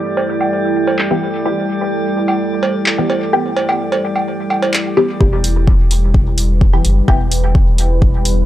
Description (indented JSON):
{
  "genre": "dub techno",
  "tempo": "128 BPM",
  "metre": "4/4",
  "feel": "straight",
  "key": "E minor",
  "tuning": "A4 = 444 Hz",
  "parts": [
    { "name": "deep dark ambient pad", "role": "sustained chords", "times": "0.0-8.5 s", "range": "G3 to B4", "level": "-20 LUFS", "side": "right 1 dB", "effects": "chorus, built-in reverb, sidechain pumping" },
    { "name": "drifting glass-harmonics texture", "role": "texture", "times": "0.0-5.2 s", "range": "G4 to D5", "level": "-24 LUFS", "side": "left 1 dB", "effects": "chorus, built-in reverb, sidechain pumping" },
    { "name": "cowbell and woodblock", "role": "percussion", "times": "0.2-4.7 s", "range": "none", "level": "-20 LUFS", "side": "right 2 dB", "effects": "sidechain pumping on perc, dub echo" },
    { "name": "punchy analog drum machine", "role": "drums", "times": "1.0-8.4 s", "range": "handclaps, hi-hat", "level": "-19 LUFS", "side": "equal", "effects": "overdrive" },
    { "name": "filtered dub chord stab", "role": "stabs", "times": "1.1-7.2 s", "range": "E3 to G4", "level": "-20 LUFS", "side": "left 1 dB", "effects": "phaser, vintage 12-bit sampler grit, dub echo" },
    { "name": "soft dub sub bass", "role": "bass", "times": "5.2-8.5 s", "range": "E1 to F#1", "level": "-15 LUFS", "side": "equal", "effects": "sidechain pumping" },
    { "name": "electronic kick drum", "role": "drums", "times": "5.2-8.1 s", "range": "none", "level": "-13 LUFS", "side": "equal", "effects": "none" }
  ],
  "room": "little or no reverb",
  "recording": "dry, gritty hardware recording, transformer saturation, low-pass filter",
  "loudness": "-13 LUFS",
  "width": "side -13 dB against mid",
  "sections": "0.0-5.2 A section; 5.2-8.5 B section",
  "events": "filter sweep 0.0-5.2",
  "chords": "0.0 Em"
}